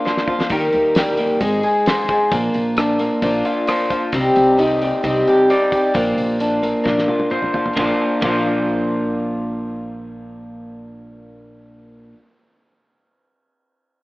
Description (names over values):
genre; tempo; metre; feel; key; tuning
folk rock and heartland rock; 132 BPM; 4/4; straight; Bb major; A4 = 440 Hz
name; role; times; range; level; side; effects
picked twelve-string acoustic guitar; accompaniment; 0.0-12.2 s; C3 to D5; -20 LUFS; left 1 dB; none
electric guitar through a small old amp; riff; 0.0-12.2 s; C3 to D5; -19 LUFS; equal; none
damped 70s drum kit; drums; 0.1-8.3 s; hi-hat, kick drum, ride cymbal, rim click, snare drum, toms; -25 LUFS; equal; none
upright bass; bass; 0.5-12.1 s; Ab1 to Eb2; -29 LUFS; equal; none
room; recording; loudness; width
moderate lush hall reverb, RT60 1.8 s, small room ambience; rough home demo mix, AM radio sound; -15 LUFS; side -20 dB against mid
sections
0.0-7.8 A section; 7.8-11.4 B section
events
drum fill 0.1-0.5, 6.9-7.8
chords
0.0 Bbadd9; 0.5 Eb; 1.4 Ab; 2.3 Bbadd9; 4.1 Cmadd9; 6.0 Bbadd9